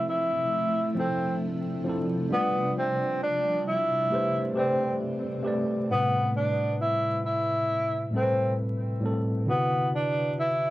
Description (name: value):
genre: lo-fi hip hop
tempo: 67 BPM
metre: 4/4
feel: swing 64% on 16ths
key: A minor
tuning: A4 = 442 Hz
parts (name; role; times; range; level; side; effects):
- breathy tenor saxophone; melody; 0.0-10.7 s; B3 to E4; -26 LUFS; equal; cassette tape
- tine electric piano; accompaniment; 0.0-10.7 s; A2 to D5; -29 LUFS; equal; overdrive, fast stereo tremolo, cassette tape
- granular cloud pad; sustained chords; 0.0-5.9 s; C3 to E4; -34 LUFS; equal; built-in reverb, cassette tape
room: moderate studio ambience, RT60 0.5 s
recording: home recording on cassette, vinyl crackle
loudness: -24 LUFS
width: side -16 dB against mid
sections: 0.0-5.9 A section; 5.9-10.7 B section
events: none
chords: 0.0 Fmaj7; 2.3 G7sus4; 4.1 Am9; 9.5 D13